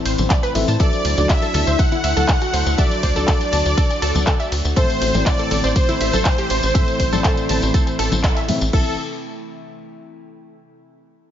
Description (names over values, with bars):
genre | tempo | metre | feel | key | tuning
progressive house | 121 BPM | 4/4 | straight | A dorian | A4 = 439 Hz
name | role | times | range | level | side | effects
evolving wavetable pad | sustained chords | 0.0-9.0 s | C3 to B5 | -29 LUFS | left 2 dB | chorus, built-in reverb, sidechain pumping
felt-muted upright piano | stabs | 0.0-8.9 s | A2 to E5 | -25 LUFS | left 2 dB | sidechain pumping, digital delay
wide unison pluck | arpeggios | 0.1-9.0 s | E4 to A6 | -26 LUFS | right 1 dB | sidechain pumping, digital delay
tight sequencer bass | bass | 0.1-9.0 s | A1 to A2 | -21 LUFS | equal | tube saturation, sidechain pumping
house drum kit | drums | 0.1-8.8 s | crash cymbal, handclaps, hi-hat, ride cymbal, tambourine | -25 LUFS | left 1 dB | sidechain pumping on hats, studio reverb, sidechain pumping on perc, sidechain pumping on cymbals
congas and woodblock | percussion | 0.2-8.5 s | none | -29 LUFS | left 2 dB | sidechain pumping on perc
electronic kick drum | drums | 0.3-8.8 s | none | -18 LUFS | equal | studio reverb
soft supersaw | melody | 0.8-9.0 s | A4 to F#5 | -23 LUFS | equal | sidechain pumping, digital delay
glassy wavetable pluck | second line | 0.8-9.0 s | A4 to F#5 | -32 LUFS | left 2 dB | none
room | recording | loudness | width
light reverb | nothing above 7.5 kHz | -15 LUFS | side -10 dB against mid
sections
0.0-8.7 A section; 8.7-10.7 B section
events
drop 0.0-8.7; band accent 8.2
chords
0.0 Am; 0.8 Dadd9; 4.8 Am